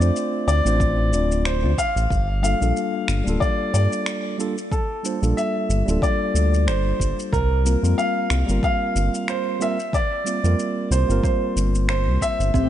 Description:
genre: sunset chillout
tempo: 92 BPM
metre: 4/4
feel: swing 56% on 16ths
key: unclear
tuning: A4 = 440 Hz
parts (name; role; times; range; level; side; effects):
- dark baby grand piano; melody; 0.0-12.7 s; A4 to F5; -25 LUFS; equal; tape echo
- mellow tine electric piano; accompaniment; 0.0-12.5 s; G3 to D5; -26 LUFS; moving between left 7 dB and right 5 dB; auto-pan, tape echo
- round analog bass; bass; 0.0-12.7 s; D1 to G2; -20 LUFS; equal; none
- electronic shaker and finger snaps; drums; 0.0-12.7 s; none; -30 LUFS; left 1 dB; small room ambience
- electronic kick drum; drums; 0.8-12.7 s; none; -24 LUFS; equal; small room ambience
- airy breathy pad; sustained chords; 12.5-12.7 s; E3 to G4; -23 LUFS; left 8 dB; chorus
- kalimba; arpeggios; 12.5-12.7 s; C4; -23 LUFS; right 5 dB; none
room: light reverb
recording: nothing above 10.5 kHz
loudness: -19 LUFS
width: side -11 dB against mid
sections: 0.0-12.7 A section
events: none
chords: 0.0 Dm7; 2.1 Gm9; 7.3 C7sus4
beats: 0.15 0.80 1.46 | 2.11 2.76 3.41 4.07 | 4.72 5.37 6.02 6.67 | 7.33 7.98 8.63 9.28 | 9.93 10.59 11.24 11.89 | 12.54

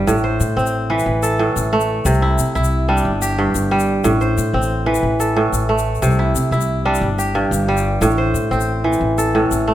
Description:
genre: west african traditional, West African string and xylophone music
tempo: 121 BPM (dotted quarters)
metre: 12/8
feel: straight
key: unclear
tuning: A4 = 440 Hz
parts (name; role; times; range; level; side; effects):
- kora; arpeggios; 0.0-9.7 s; G2 to C5; -17 LUFS; right 1 dB; none
- upright bass; bass; 0.0-9.7 s; G1 to C3; -20 LUFS; left 1 dB; none
- egg shaker; percussion; 0.1-9.6 s; none; -29 LUFS; left 11 dB; none
room: light reverb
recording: none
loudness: -15 LUFS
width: side -12 dB against mid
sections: 0.0-9.7 A section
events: none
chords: 0.1 Am; 2.1 C; 3.0 G5; 4.0 Am; 6.0 C; 7.0 G5; 8.0 Am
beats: | 0.07 0.57 1.06 1.56 | 2.06 2.55 3.05 3.54 | 4.04 4.54 5.03 5.53 | 6.03 6.53 7.02 7.52 | 8.02 8.52 9.01 9.51

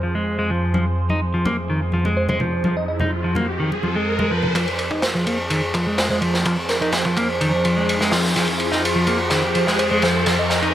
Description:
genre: breakbeat, breaks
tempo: 126 BPM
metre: 4/4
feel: straight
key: F minor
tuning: A4 = 440 Hz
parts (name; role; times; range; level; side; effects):
- phased analog pad; sustained chords; 0.0-10.7 s; F2 to C5; -24 LUFS; equal; phaser, chorus, sidechain pumping
- clean electric guitar; riff; 0.0-10.7 s; Eb3 to Eb4; -22 LUFS; equal; vintage 12-bit sampler grit, low-pass filter, dub echo
- congas; percussion; 0.7-4.5 s; none; -26 LUFS; left 2 dB; none
- riser; sound effects; 1.8-10.7 s; none; -28 LUFS; equal; none
- bell-like FM electric piano; melody; 2.2-3.0, 6.0-6.9, 9.8-10.6 s; Bb4 to Eb5; -27 LUFS; equal; chorus, AM radio sound, cassette tape, dub echo
- crunchy breakbeat drum kit; drums; 4.5-10.7 s; hi-hat, kick drum, ride cymbal, snare drum; -21 LUFS; equal; high-pass filter on kick, high-pass filter on cymbals, high-pass filter on hats, high-pass filter on snare, high-pass filter on room
room: light reverb, small room ambience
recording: vinyl crackle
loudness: -17 LUFS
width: side -12 dB against mid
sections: 0.0-4.6 A section; 4.6-10.7 B section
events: riser 1.8-4.6, 4.6-10.7; build-up 4.6-10.7; filter sweep on clean electric guitar 4.6-10.7; drum fill 8.4-10.7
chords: 0.0 Fm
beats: 0.27 | 0.74 1.22 1.70 2.17 | 2.65 3.12 3.60 4.08 | 4.55 5.03 5.50 5.98 | 6.46 6.93 7.41 7.88 | 8.36 8.84 9.31 9.79 | 10.27

